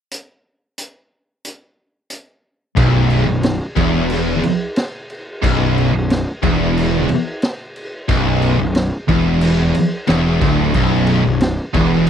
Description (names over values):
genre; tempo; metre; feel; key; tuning
stoner and doom metal; 90 BPM; 4/4; straight; B minor; A4 = 440 Hz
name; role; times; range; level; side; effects
raw garage drum kit; drums; 0.1-12.1 s; crash cymbal, hi-hat, kick drum, snare drum; -22 LUFS; equal; none
thick fuzz guitar; riff; 2.8-12.1 s; B1 to E2; -19 LUFS; left 8 dB; distortion
thick fuzz guitar; riff; 2.8-12.1 s; B1 to E2; -19 LUFS; right 8 dB; distortion
tight distorted guitar; riff; 2.8-12.1 s; B1 to E2; -21 LUFS; equal; distortion
fuzz picked electric bass; bass; 2.8-12.1 s; B0 to E1; -20 LUFS; equal; overdrive
room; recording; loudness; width
little or no reverb; dry, close 1970s-style studio recording; -14 LUFS; side -8 dB against mid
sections
0.1-2.8 A section; 2.8-12.1 B section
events
none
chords
0.1 N.C.; 2.8 Bm